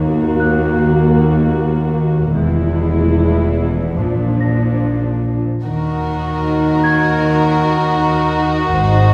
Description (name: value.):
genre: cinematic.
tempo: 72-77 BPM.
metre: 4/4.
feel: straight.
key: Eb phrygian.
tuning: A4 = 440 Hz.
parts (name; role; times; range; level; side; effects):
dark symphonic viola section; accompaniment; 0.0-9.1 s; F3 to Gb4; -22 LUFS; equal; none.
marimba with soft mallets; riff; 0.0-9.0 s; E2 to Eb4; -21 LUFS; equal; none.
dark symphonic double bass section; bass; 0.0-9.1 s; E1 to Eb2; -24 LUFS; equal; none.
warm symphonic cello section; bass; 0.0-9.1 s; Eb2 to Eb3; -22 LUFS; equal; none.
large celesta; texture; 0.4-9.1 s; Gb6 to Bb6; -26 LUFS; equal; none.
warm symphonic violin section; melody; 5.6-9.1 s; Bb4 to C5; -24 LUFS; equal; none.
warm chamber violin section; second line; 5.6-9.1 s; Gb4; -22 LUFS; equal; none.
room: wet scoring stage reverb, RT60 1.7 s.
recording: heard from further back in the room, faint mains hum.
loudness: -16 LUFS.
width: mono.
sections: 0.0-5.6 A section; 5.6-9.1 A section.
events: none.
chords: 0.0 Ebm; 2.4 E; 4.0 Bb; 5.6 Ebm.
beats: 0.01 0.79 1.57 | 2.36 3.16 3.98 4.82 | 5.64 6.43 7.22 8.00 | 8.79.